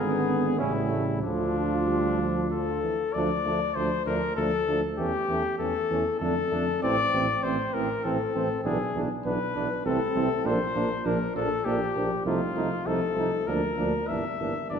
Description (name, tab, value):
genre	classical, brass quintet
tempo	98 BPM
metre	3/4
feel	straight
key	D minor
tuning	A4 = 440 Hz
part	warm trumpet	melody	0.0-14.8 s	D4 to E5	-28 LUFS	left 5 dB	none
part	mellow flugelhorn	second line	0.0-14.8 s	A3 to F4	-32 LUFS	right 4 dB	none
part	mellow trombone	accompaniment	0.0-14.8 s	C#3 to G3	-34 LUFS	right 2 dB	none
part	warm French horn	accompaniment	0.0-14.8 s	F3 to C4	-35 LUFS	left 1 dB	none
part	mellow tuba	bass	0.0-14.8 s	G1 to F2	-31 LUFS	right 3 dB	none
room	wet scoring stage reverb, RT60 1.6 s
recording	heard from further back in the room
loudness	-24 LUFS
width	side -7 dB against mid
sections	0.0-3.2 A section; 3.2-14.8 B section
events	none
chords	0.0 G#dim; 0.6 A7; 1.2 Dm; 5.0 A7/E; 6.2 Dm/F; 6.8 Am; 8.6 E5/B; 9.9 Am/C; 10.5 Bb; 12.3 F7/C; 13.5 Bb/D; 14.1 Em7b5/G